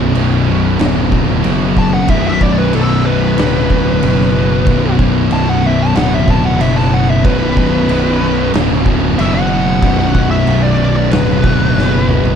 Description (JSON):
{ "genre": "stoner and doom metal", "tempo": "93 BPM", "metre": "4/4", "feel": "straight", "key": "B minor", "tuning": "A4 = 439 Hz", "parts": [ { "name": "high-gain distorted guitar", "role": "riff", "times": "0.0-12.4 s", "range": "B1 to B2", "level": "-21 LUFS", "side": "right 1 dB", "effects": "distortion" }, { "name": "thick fuzz guitar", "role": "riff", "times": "0.0-12.4 s", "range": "B1 to B2", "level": "-17 LUFS", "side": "left 10 dB", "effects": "distortion" }, { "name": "thick fuzz guitar", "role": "riff", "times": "0.0-12.4 s", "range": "B1 to B2", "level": "-18 LUFS", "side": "right 11 dB", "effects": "distortion" }, { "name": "fuzz picked electric bass", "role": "bass", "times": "0.0-12.4 s", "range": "B0 to F#1", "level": "-16 LUFS", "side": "equal", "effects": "overdrive" }, { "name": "oversized low-tuned drum kit", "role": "drums", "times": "0.2-12.4 s", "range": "crash cymbal, kick drum, snare drum, toms", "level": "-18 LUFS", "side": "right 1 dB", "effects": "none" }, { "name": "fuzz lead guitar", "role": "melody", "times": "1.8-12.4 s", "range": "A4 to A5", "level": "-19 LUFS", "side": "left 2 dB", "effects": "wah, distortion" } ], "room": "little or no reverb", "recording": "dark, warm production", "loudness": "-10 LUFS", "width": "side -8 dB against mid", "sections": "0.0-12.4 A section", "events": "lead electric guitar solo 0.0-12.4; drum fill 11.8-12.4", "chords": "0.0 Bm" }